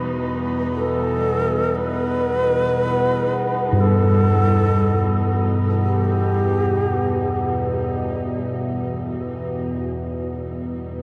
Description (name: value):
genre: dark ambient drone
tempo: free time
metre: none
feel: none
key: E harmonic minor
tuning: A4 = 441 Hz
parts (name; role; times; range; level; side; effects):
- long shakuhachi; melody; 0.0-7.8 s; G4 to B4; -26 LUFS; equal; diffuse ambient delay
- muted studio cello section; sustained chords; 0.0-11.0 s; E3 to D#4; -35 LUFS; equal; none
- gamelan-type bossed gongs; arpeggios; 0.0-9.8 s; G2 to A4; -23 LUFS; equal; none
- overtone-sweeping drone; drone; 0.0-11.0 s; E2 to B2; -25 LUFS; equal; chorus, built-in reverb
room: wet cathedral reverb, RT60 6.6 s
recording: dark, warm production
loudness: -21 LUFS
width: mono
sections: 0.0-9.9 A section; 9.9-11.0 B section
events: fade-out on cello section 0.0-9.9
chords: 0.0 Em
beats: free time